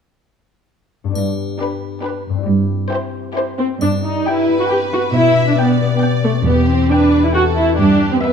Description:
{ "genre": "cinematic, playful, whimsical film cue", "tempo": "136 BPM", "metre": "3/4", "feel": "straight", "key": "G major", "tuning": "A4 = 440 Hz", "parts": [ { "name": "concert harp", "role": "arpeggios", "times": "1.0-8.3 s", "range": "E2 to B4", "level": "-20 LUFS", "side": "left 7 dB", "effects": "none" }, { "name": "dark studio cello section", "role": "bass", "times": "1.1-8.1 s", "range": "E2 to B2", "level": "-18 LUFS", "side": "right 4 dB", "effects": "none" }, { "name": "triangle", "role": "percussion", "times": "1.2-4.7 s", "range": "none", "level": "-37 LUFS", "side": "left 3 dB", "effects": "none" }, { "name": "rich studio violin section", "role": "melody", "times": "1.6-8.3 s", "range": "B4 to G5", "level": "-25 LUFS", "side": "left 2 dB", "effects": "none" }, { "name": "clear studio violin section", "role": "second line", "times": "1.6-8.3 s", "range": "G4 to E5", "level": "-23 LUFS", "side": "equal", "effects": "none" }, { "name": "dark studio viola section", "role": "accompaniment", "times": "1.6-8.3 s", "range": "A3 to G4", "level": "-16 LUFS", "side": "right 2 dB", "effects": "none" } ], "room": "wet recital hall reverb, RT60 1.4 s", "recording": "dark, warm production", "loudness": "-14 LUFS", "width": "side -7 dB against mid", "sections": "1.2-3.8 A section; 3.8-8.3 B section", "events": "none", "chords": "1.2 G; 2.5 C/G; 3.8 G; 5.1 G/B; 6.5 Em; 7.8 Em/G", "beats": "| 1.15 1.60 2.04 | 2.47 2.91 3.36 | 3.81 4.26 4.71 | 5.15 5.59 6.03 | 6.47 6.91 7.35 | 7.78 8.22" }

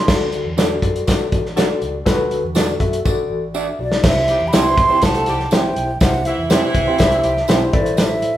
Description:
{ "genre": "uptempo 1960s-style soul", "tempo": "122 BPM", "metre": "4/4", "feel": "straight", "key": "unclear", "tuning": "A4 = 440 Hz", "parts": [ { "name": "breathy mellow concert flute", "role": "melody", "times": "0.0-0.1, 3.8-8.4 s", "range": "D5 to C6", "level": "-19 LUFS", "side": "right 2 dB", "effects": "none" }, { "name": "vintage muted fingered electric bass", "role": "bass", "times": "0.0-8.2 s", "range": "A1 to D3", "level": "-27 LUFS", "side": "equal", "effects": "none" }, { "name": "overdriven tine electric piano", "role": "accompaniment", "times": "0.1-8.4 s", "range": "A2 to F#5", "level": "-22 LUFS", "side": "left 3 dB", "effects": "fast tremolo" }, { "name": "warm soul drum kit", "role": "drums", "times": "0.1-8.3 s", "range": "crash cymbal, hi-hat, kick drum, snare drum", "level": "-18 LUFS", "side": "equal", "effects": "none" }, { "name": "tambourine", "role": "percussion", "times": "0.1-8.1 s", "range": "none", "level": "-34 LUFS", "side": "right 4 dB", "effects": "none" }, { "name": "electric guitar through a small old amp", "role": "stabs", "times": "0.6-7.6 s", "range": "C4 to D5", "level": "-24 LUFS", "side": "right 4 dB", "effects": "none" }, { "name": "clear saxophone section", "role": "second line", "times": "4.3-7.4 s", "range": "E3 to A4", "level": "-25 LUFS", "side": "right 1 dB", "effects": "none" } ], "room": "wet large studio reverb, RT60 1.1 s", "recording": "band playing live in one room, vinyl crackle", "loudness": "-15 LUFS", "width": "side -12 dB against mid", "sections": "0.1-4.0 A section; 4.0-8.4 B section", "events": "drum fill 3.0-4.0", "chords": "0.1 D; 4.0 C; 7.7 Am", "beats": "| 0.08 0.57 1.07 1.56 | 2.06 2.55 3.05 3.54 | 4.04 4.53 5.02 5.51 | 6.01 6.50 7.00 7.49 | 7.98" }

